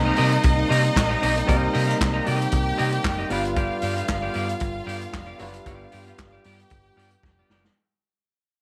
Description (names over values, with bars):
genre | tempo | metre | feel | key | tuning
disco | 115 BPM | 4/4 | swing 56% on 16ths | unclear | A4 = 436 Hz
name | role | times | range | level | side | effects
rich studio violin section | second line | 0.0-7.5 s | Eb4 to G5 | -30 LUFS | equal | none
bell-like tine electric piano | accompaniment | 0.0-7.8 s | G3 to B4 | -32 LUFS | equal | none
warm French horn section | sustained chords | 0.0-7.7 s | C3 to G4 | -36 LUFS | equal | none
hollow-body short-scale fingered electric bass | bass | 0.0-7.7 s | F1 to C3 | -29 LUFS | equal | none
clean electric guitar | accompaniment | 0.1-7.7 s | B3 to F5 | -30 LUFS | equal | vibrato effect
vintage drum kit | drums | 0.2-7.7 s | handclaps, hi-hat, kick drum, snare drum | -28 LUFS | equal | none
room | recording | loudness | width
light reverb, studio reverb | none | -23 LUFS | mono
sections
0.0-7.7 A section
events
fade-out 0.0-7.7; drum fill 7.2-7.7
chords
0.0 Cm7; 3.3 G7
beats
0.44 0.96 | 1.49 2.01 2.53 3.05 | 3.57 4.09 4.62 5.14 | 5.66 6.18 6.70 7.23